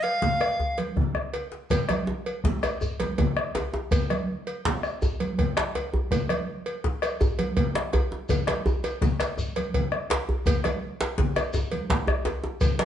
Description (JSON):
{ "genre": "west african traditional, West African drum ensemble", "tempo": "110 BPM (dotted quarters)", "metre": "12/8", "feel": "straight", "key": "unclear", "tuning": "A4 = 438 Hz", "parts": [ { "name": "breathy bright tenor recorder", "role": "melody", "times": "0.0-0.8 s", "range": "F5", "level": "-25 LUFS", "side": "equal", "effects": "none" }, { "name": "bombo", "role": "percussion", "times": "0.0-12.8 s", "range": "none", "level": "-28 LUFS", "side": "left 1 dB", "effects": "none" }, { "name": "congas", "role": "percussion", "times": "0.0-12.8 s", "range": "none", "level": "-31 LUFS", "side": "right 1 dB", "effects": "none" }, { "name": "cowbell", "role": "percussion", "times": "0.0-12.8 s", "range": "none", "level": "-32 LUFS", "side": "right 1 dB", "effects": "none" }, { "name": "djembe", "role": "percussion", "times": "0.2-12.8 s", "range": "none", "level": "-33 LUFS", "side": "left 2 dB", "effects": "none" }, { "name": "shekere", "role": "percussion", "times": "1.7-12.8 s", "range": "none", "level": "-37 LUFS", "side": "equal", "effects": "none" }, { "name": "djembe", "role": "percussion", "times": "1.9-12.8 s", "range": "none", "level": "-28 LUFS", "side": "right 1 dB", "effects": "none" } ], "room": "moderate stone room reverb, RT60 1.0 s", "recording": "band playing live in one room, nothing above 10.6 kHz", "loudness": "-24 LUFS", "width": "side -10 dB against mid", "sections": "0.0-1.7 A section; 1.7-12.8 B section", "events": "speeding up 0.0-12.8; drum fill 1.0-1.7", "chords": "none", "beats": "0.04 0.60 1.15 | 1.71 2.26 2.81 3.37 | 3.92 4.47 5.02 5.57 | 6.11 6.66 7.21 7.75 | 8.29 8.84 9.38 9.92 | 10.46 11.00 11.54 12.07 | 12.61" }